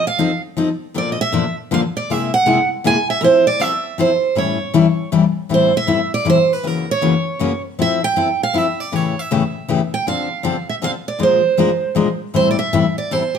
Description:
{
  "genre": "jazz",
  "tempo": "158 BPM",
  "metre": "3/4",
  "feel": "swing 61% on 8ths",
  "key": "A minor from 5.5 s",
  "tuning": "A4 = 441 Hz",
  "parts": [
    { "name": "picked steel-string acoustic guitar", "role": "melody", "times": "0.0-13.4 s", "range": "A4 to G#5", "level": "-17 LUFS", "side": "right 5 dB", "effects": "none" },
    { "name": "picked steel-string acoustic guitar", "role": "accompaniment", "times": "0.0-13.2 s", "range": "F#2 to Bb4", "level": "-18 LUFS", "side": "left 5 dB", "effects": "none" }
  ],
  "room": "moderate studio reverb, RT60 1.0 s",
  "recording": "none",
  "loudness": "-15 LUFS",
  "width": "side -7 dB against mid",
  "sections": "0.0-5.5 A section; 5.5-13.4 B section",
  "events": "none",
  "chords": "0.0 F7; 0.9 Bbmaj7; 2.1 Caug7; 3.2 Fmaj7; 4.4 A7; 5.5 Am7; 6.6 F#7; 7.8 Fmaj9; 8.9 A7; 10.1 Dm7; 11.2 Bb9; 12.3 Am7"
}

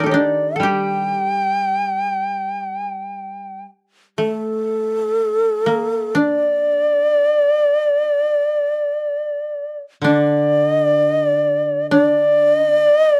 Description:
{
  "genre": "japanese traditional, Japanese chamber music",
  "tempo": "58-65 BPM",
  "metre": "4/4",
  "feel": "rubato",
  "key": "unclear",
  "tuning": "A4 = 440 Hz",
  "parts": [
    { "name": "breathy bright long shakuhachi", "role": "melody", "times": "0.0-13.2 s", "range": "A4 to G5", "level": "-19 LUFS", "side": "equal", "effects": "none" },
    { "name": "koto", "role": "second line", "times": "0.0-13.2 s", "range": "A3 to G5", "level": "-24 LUFS", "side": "equal", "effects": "none" },
    { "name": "koto", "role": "accompaniment", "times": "0.0-3.6, 10.0-12.8 s", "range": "D3 to G3", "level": "-28 LUFS", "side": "equal", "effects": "none" }
  ],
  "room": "light reverb",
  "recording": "dark, warm production",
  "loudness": "-18 LUFS",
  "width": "mono",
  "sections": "0.0-4.2 A section; 4.2-13.2 B section",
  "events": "none",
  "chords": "none"
}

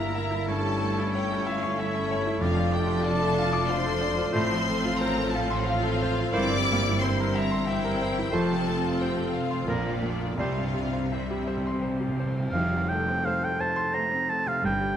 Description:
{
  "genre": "classical, romantic movement for piano and orchestra",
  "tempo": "82-96 BPM",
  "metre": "3/4",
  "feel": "rubato",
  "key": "D minor, F major from 4.3 s",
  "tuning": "A4 = 439 Hz",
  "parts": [
    { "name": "clear concert grand piano", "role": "melody", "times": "0.0-15.0 s", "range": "Bb1 to E6", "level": "-29 LUFS", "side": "left 1 dB", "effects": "none" },
    { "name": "rich studio violin section", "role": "melody", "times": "0.0-14.5 s", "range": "C5 to D6", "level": "-34 LUFS", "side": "left 4 dB", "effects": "none" },
    { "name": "clear oboe", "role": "second line", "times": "0.0-15.0 s", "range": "Bb4 to Bb5", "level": "-31 LUFS", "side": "right 2 dB", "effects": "none" },
    { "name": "dark clarinet", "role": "second line", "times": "0.0-10.7 s", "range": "E4 to G4", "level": "-38 LUFS", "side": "left 3 dB", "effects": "none" },
    { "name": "rich studio violin section", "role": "second line", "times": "0.0-14.5 s", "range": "C4 to D5", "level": "-36 LUFS", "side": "left 2 dB", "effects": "none" },
    { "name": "dark bassoon", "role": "accompaniment", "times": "0.0-10.6 s", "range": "G3 to Bb3", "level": "-36 LUFS", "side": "right 2 dB", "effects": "none" },
    { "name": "rich studio viola section", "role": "accompaniment", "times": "0.0-14.5 s", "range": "G3 to F4", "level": "-34 LUFS", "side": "left 1 dB", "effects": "none" },
    { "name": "mellow French horn section", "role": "sustained chords", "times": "0.0-12.2 s", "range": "E3 to E4", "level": "-35 LUFS", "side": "left 4 dB", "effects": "none" },
    { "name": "rich studio double bass section", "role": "bass", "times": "0.0-15.0 s", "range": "F1 to C2", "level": "-34 LUFS", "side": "right 4 dB", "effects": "none" },
    { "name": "warm studio cello section", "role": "bass", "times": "0.0-15.0 s", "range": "F2 to C3", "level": "-33 LUFS", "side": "right 3 dB", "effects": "none" },
    { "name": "timpani", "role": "percussion", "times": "2.4-3.3, 10.4-12.5 s", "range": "F2 to C3", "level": "-35 LUFS", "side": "right 1 dB", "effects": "none" },
    { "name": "cymbal swell and tam-tam", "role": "percussion", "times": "8.3-15.0 s", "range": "none", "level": "-39 LUFS", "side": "left 2 dB", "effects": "none" }
  ],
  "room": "moderate concert hall reverb, RT60 2.2 s",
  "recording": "close, detailed microphones",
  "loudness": "-24 LUFS",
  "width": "side -9 dB against mid",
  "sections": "0.0-12.5 A section; 12.5-15.0 B section",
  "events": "timpani fill 10.4-12.5; band accent 12.5-13.3",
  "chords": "0.5 A7/G; 2.4 Dm/F; 4.3 F/A; 6.3 C7/G; 8.3 F; 9.7 Bb; 10.4 C; 12.5 F"
}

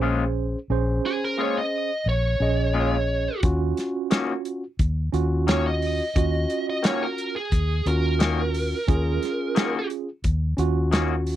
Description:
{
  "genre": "straight-eighth soul blues",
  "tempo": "88 BPM",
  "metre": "4/4",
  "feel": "straight",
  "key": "unclear",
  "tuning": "A4 = 438 Hz",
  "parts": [
    { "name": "tine electric piano", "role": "accompaniment", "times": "0.0-11.4 s", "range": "Db4 to Eb5", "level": "-27 LUFS", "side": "right 4 dB", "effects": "medium stereo tremolo" },
    { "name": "electric guitar through a small old amp", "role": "stabs", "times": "0.0-11.1 s", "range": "Bb2 to Gb4", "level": "-26 LUFS", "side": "left 6 dB", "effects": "none" },
    { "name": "vintage muted fingered electric bass", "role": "bass", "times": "0.0-11.4 s", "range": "Bb1 to Eb2", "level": "-24 LUFS", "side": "left 1 dB", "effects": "none" },
    { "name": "biting lead guitar", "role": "melody", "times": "1.1-9.9 s", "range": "Ab4 to Eb5", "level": "-27 LUFS", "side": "right 1 dB", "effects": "overdrive" },
    { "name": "warm soul drum kit", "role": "drums", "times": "3.4-11.4 s", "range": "hi-hat, kick drum, snare drum", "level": "-24 LUFS", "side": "equal", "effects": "none" }
  ],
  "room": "little or no reverb",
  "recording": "dry, close 1970s-style studio recording",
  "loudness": "-21 LUFS",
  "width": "side -12 dB against mid",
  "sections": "0.0-11.4 A section",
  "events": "none",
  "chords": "0.0 Bbm7; 3.4 Ebm7"
}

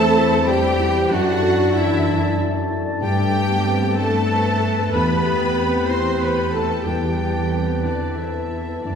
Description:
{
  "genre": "cinematic, emotional film score for orchestra",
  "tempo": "94 BPM",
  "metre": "3/4",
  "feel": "rubato",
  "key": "unclear",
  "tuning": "A4 = 442 Hz",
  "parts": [
    { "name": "clear symphonic violin section", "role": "melody", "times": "0.0-9.0 s", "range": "D5 to C6", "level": "-30 LUFS", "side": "equal", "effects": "none" },
    { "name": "bright symphonic violin section", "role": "second line", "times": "0.0-9.0 s", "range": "D5 to C6", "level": "-31 LUFS", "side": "left 1 dB", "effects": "none" },
    { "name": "concert flute", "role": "second line", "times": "0.0-9.0 s", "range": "D5 to C6", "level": "-28 LUFS", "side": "right 1 dB", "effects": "none" },
    { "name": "dark clarinet", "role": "second line", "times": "0.0-9.0 s", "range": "B4 to E5", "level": "-30 LUFS", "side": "left 2 dB", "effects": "none" },
    { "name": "warm oboe", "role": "second line", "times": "0.0-9.0 s", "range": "G5 to B5", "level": "-32 LUFS", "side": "equal", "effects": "none" },
    { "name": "felt-muted upright piano", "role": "accompaniment", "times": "0.0-9.0 s", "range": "E2 to E5", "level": "-25 LUFS", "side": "left 2 dB", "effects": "none" },
    { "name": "rich symphonic viola section", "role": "accompaniment", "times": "0.0-9.0 s", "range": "D4 to C5", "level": "-23 LUFS", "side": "equal", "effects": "none" },
    { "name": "mellow French horn section", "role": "sustained chords", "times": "0.0-9.0 s", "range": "A3 to C5", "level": "-26 LUFS", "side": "left 4 dB", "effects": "none" },
    { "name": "clear symphonic cello section", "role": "bass", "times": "0.0-9.0 s", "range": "D3 to C4", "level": "-27 LUFS", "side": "right 1 dB", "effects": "none" },
    { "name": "rich symphonic double bass section", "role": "bass", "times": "0.0-9.0 s", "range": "E2 to G2", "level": "-24 LUFS", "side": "right 1 dB", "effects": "none" }
  ],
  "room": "wet scoring stage reverb, RT60 1.8 s",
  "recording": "heard from further back in the room",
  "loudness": "-17 LUFS",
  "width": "side -7 dB against mid",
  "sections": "0.0-9.0 A section",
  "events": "none",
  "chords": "0.0 Amadd9/E; 1.1 Dadd9/F#; 3.0 Gadd9; 4.9 Em; 6.9 Amadd9/E"
}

